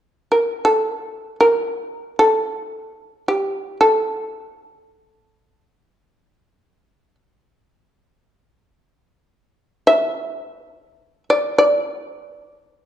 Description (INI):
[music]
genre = japanese traditional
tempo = free time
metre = none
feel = none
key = A in sen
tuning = A4 = 440 Hz
[part]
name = shamisen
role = melody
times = 0.3-12.9 s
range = G4 to E5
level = -16 LUFS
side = equal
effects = none
[sound]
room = moderate recital hall reverb, RT60 1.6 s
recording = dark, warm production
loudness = -17 LUFS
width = side -11 dB against mid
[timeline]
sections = 0.0-12.9 A section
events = none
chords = none